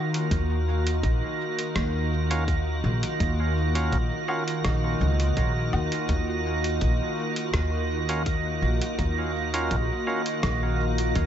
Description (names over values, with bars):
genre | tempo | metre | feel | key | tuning
ambient dub | 83 BPM | 4/4 | straight | Eb minor | A4 = 440 Hz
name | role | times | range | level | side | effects
soft additive organ-like pad | sustained chords | 0.0-11.3 s | Eb3 to Gb4 | -29 LUFS | equal | ensemble chorus, built-in reverb
drifting glass-harmonics texture | texture | 0.0-11.3 s | Eb5 | -33 LUFS | right 6 dB | chorus, built-in reverb
lo-fi sampler-style drum kit | drums | 0.1-11.3 s | hi-hat, rim click, woodblock | -34 LUFS | equal | overdrive, dub echo
upright bass | bass | 0.3-11.3 s | Bb1 to Eb2 | -26 LUFS | equal | tube saturation
electronic kick drum | drums | 0.3-11.3 s | none | -29 LUFS | equal | none
percussive tonewheel organ | stabs | 2.3-10.2 s | Db4 to Bb4 | -34 LUFS | right 2 dB | overdrive, dub echo
room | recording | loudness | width
light reverb | nothing above 7.9 kHz | -23 LUFS | side -10 dB against mid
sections
0.0-11.3 A section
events
none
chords
0.0 Ebm7